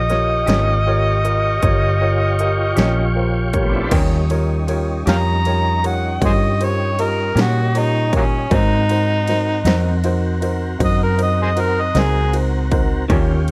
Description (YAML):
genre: slow blues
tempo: 52 BPM (dotted quarters)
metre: 12/8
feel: straight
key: Eb mixolydian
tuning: A4 = 440 Hz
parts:
  - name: overdriven harmonica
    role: melody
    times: 0.0-12.3 s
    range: Gb3 to Bb5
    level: -22 LUFS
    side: equal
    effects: none
  - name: tonewheel organ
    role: sustained chords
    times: 0.0-13.5 s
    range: G3 to D5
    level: -29 LUFS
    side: equal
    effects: chorus vibrato, lush chorus
  - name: vintage muted fingered electric bass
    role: bass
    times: 0.0-13.5 s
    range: G1 to Bb2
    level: -21 LUFS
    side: equal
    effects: none
  - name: warm upright piano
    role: accompaniment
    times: 0.1-13.4 s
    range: Eb4 to Eb5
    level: -27 LUFS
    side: equal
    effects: none
  - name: big-room dance drum kit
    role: drums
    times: 0.1-13.5 s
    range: crash cymbal, hi-hat, kick drum, ride cymbal, snare drum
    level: -24 LUFS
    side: equal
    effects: overdrive
  - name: electric guitar through a small old amp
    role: accompaniment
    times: 0.5-13.3 s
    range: Ab2 to G4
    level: -29 LUFS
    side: equal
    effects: tremolo
room: digital ambience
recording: none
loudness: -17 LUFS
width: mono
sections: 0.0-3.9 A section; 3.9-13.5 B section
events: harmonica solo 3.9-13.5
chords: 0.0 Eb7; 8.5 Ab7